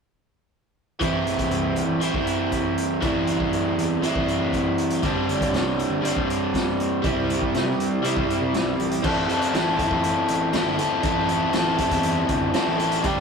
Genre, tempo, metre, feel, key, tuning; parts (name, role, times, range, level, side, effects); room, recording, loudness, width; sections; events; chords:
indie rock; 120 BPM; 4/4; straight; A4 = 440 Hz
overdriven electric guitar; riff; 1.0-13.2 s; E3 to A4; -22 LUFS; equal
fuzz fingered electric bass; bass; 1.0-13.2 s; G1 to C3; -30 LUFS; equal; overdrive
raw garage drum kit; drums; 1.0-13.2 s; crash cymbal, hi-hat, kick drum, snare drum; -28 LUFS; left 1 dB
moderate studio reverb, RT60 0.6 s; rough rehearsal-room recording; -20 LUFS; side -5 dB against mid
1.0-9.0 A section; 9.0-13.2 B section
1.0 Am; 5.0 Gsus4; 7.0 C; 9.0 Am